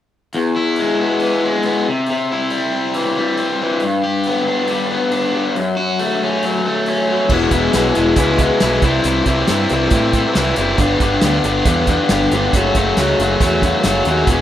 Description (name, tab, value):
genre	indie rock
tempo	138 BPM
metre	4/4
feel	straight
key	unclear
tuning	A4 = 442 Hz
part	raw garage guitar	riff	0.3-14.4 s	E2 to G#4	-15 LUFS	left 2 dB	overdrive
part	loose indie drum kit	drums	0.3-14.4 s	crash cymbal, hi-hat, kick drum, snare drum	-20 LUFS	right 2 dB	none
part	fuzz picked electric bass	bass	7.3-14.4 s	E1 to A2	-20 LUFS	right 2 dB	overdrive
room	light reverb, small room reverb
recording	rough home demo mix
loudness	-14 LUFS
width	side -11 dB against mid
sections	0.3-7.3 A section; 7.3-14.4 B section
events	none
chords	0.3 E; 1.9 C; 3.8 G; 5.6 F#m; 7.3 E; 8.8 C; 10.8 G; 12.5 F#m